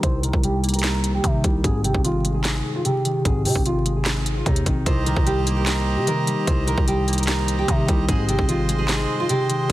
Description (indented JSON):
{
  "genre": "hip hop, trap",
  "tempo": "149 BPM",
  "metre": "4/4",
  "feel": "half-time",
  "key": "C minor",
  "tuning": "A4 = 440 Hz",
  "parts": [
    { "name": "nylon-string guitar", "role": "melody", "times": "0.0-9.7 s", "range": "Eb4 to C5", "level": "-26 LUFS", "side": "right 2 dB", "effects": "low-pass filter" },
    { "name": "concert harp", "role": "accompaniment", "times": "0.0-9.7 s", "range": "Ab2 to C4", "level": "-24 LUFS", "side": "left 1 dB", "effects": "low-pass filter" },
    { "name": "growling 808-style bass", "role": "bass", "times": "0.0-9.7 s", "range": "Ab1 to C3", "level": "-24 LUFS", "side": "equal", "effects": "none" },
    { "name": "trap drum kit", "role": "drums", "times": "0.0-9.7 s", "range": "handclaps, hi-hat, kick drum, snare drum", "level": "-23 LUFS", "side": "equal", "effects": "none" },
    { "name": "accordion", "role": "sustained chords", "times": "4.9-9.7 s", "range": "Ab3 to C6", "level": "-29 LUFS", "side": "right 4 dB", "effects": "none" }
  ],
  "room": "small room ambience",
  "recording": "dense, heavily limited modern master, vinyl crackle",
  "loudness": "-18 LUFS",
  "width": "side -15 dB against mid",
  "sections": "0.0-9.7 A section",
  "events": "filter sweep 0.0-4.9",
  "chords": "0.0 Cm7; 1.6 Ab; 4.9 Cm7; 8.1 Ab",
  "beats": "| 0.03 0.43 0.84 1.24 | 1.64 2.04 2.45 2.85 | 3.25 3.66 4.06 4.46 | 4.86 5.27 5.67 6.07 | 6.47 6.88 7.28 7.68 | 8.09 8.49 8.89 9.29 | 9.70"
}